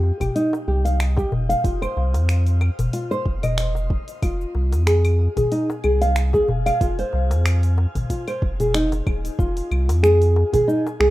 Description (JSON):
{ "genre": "organic downtempo", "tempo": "93 BPM", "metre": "4/4", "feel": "swing 55% on 16ths", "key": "unclear", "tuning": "A4 = 440 Hz", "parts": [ { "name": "nylon-string guitar", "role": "arpeggios", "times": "0.0-11.1 s", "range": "Eb4 to F5", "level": "-22 LUFS", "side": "equal", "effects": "ping-pong delay, shimmer reverb" }, { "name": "warm sub bass", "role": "bass", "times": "0.0-11.1 s", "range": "Eb1 to F2", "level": "-20 LUFS", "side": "equal", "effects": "sidechain pumping" }, { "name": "darbuka", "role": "percussion", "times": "0.0-11.0 s", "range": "none", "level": "-28 LUFS", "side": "left 2 dB", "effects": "none" }, { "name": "deep house drum kit", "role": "drums", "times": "0.2-11.1 s", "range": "cabasa, claves, finger snaps, hi-hat", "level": "-31 LUFS", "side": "equal", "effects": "overdrive" }, { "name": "electronic kick drum", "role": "drums", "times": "0.2-10.6 s", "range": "none", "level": "-23 LUFS", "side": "equal", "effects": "overdrive" } ], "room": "light reverb", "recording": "rough home demo mix", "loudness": "-18 LUFS", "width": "side -16 dB against mid", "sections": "0.0-9.4 A section; 9.4-11.1 B section", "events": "none", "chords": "0.0 Eb69/F; 4.2 Ab6; 9.4 Fm" }